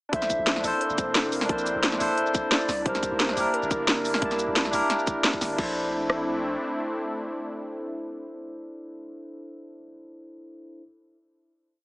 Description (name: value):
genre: liquid drum and bass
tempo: 176 BPM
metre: 4/4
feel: swing 53% on 16ths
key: Bb lydian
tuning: A4 = 440 Hz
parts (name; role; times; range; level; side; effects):
- hollow clarinet-like synth lead; melody; 0.1-5.2 s; A4 to E5; -32 LUFS; equal; chorus, dub echo
- barky tine electric piano; accompaniment; 0.1-10.8 s; D4 to A5; -28 LUFS; equal; overdrive, wide subtle chorus, dub echo
- warm analog pad; sustained chords; 0.1-9.1 s; A3 to E4; -33 LUFS; equal; chorus, sidechain pumping
- long sustained 808-style bass; bass; 0.1-6.6 s; F1 to C2; -40 LUFS; equal; none
- drum and bass drum kit; drums; 0.1-6.2 s; kick drum, rim click; -28 LUFS; equal; none
- drum and bass drum kit; drums; 0.1-5.7 s; crash cymbal, hi-hat, shaker, snare drum; -26 LUFS; equal; none
room: moderate plate reverb, RT60 1.5 s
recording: small speaker sound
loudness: -23 LUFS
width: side -22 dB against mid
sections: 0.1-5.6 drop; 5.6-8.3 final chord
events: drop 0.1-5.6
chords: 0.1 Bbmaj9#11; 2.7 C9; 5.6 Bbmaj9#11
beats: | 0.13 0.47 0.81 1.15 | 1.49 1.83 2.17 2.52 | 2.86 3.20 3.54 3.88 | 4.22 4.56 4.90 5.24 | 5.58 5.92 6.27 6.61 | 6.95 7.29 7.63 7.97